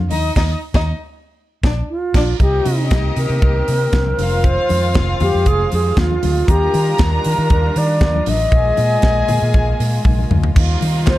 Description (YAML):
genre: disco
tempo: 118 BPM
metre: 4/4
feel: straight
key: Eb major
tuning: A4 = 445 Hz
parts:
  - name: vintage muted fingered electric bass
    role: bass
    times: 0.0-11.2 s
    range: F1 to Eb3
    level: -18 LUFS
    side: equal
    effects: none
  - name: warm studio violin section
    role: second line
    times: 0.1-11.2 s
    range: D4 to Bb5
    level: -24 LUFS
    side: left 1 dB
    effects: none
  - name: tight funk drum kit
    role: drums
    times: 0.1-11.2 s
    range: crash cymbal, hi-hat, kick drum, snare drum, toms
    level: -18 LUFS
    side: equal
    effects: none
  - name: congas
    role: percussion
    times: 0.1-11.2 s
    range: none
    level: -26 LUFS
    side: left 6 dB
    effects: none
  - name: bright reedy wooden-headed alto flute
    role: melody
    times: 1.9-11.2 s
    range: F4 to Eb5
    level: -20 LUFS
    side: equal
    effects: tape echo
  - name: clear studio string section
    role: sustained chords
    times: 2.4-11.2 s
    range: C3 to G4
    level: -28 LUFS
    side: equal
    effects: none
  - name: group handclap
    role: percussion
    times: 11.1-11.2 s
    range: none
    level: -30 LUFS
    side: right 7 dB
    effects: none
room: small room ambience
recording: dark, warm production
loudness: -14 LUFS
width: side -15 dB against mid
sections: 0.0-2.4 A section; 2.4-10.6 B section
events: band accent 0.4-2.4; drum fill 10.1-10.6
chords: 0.0 N.C.; 1.4 Bb; 2.4 Cm7; 4.2 Fm7; 6.5 Ebmaj9; 8.5 Bb7sus4; 10.6 Eb6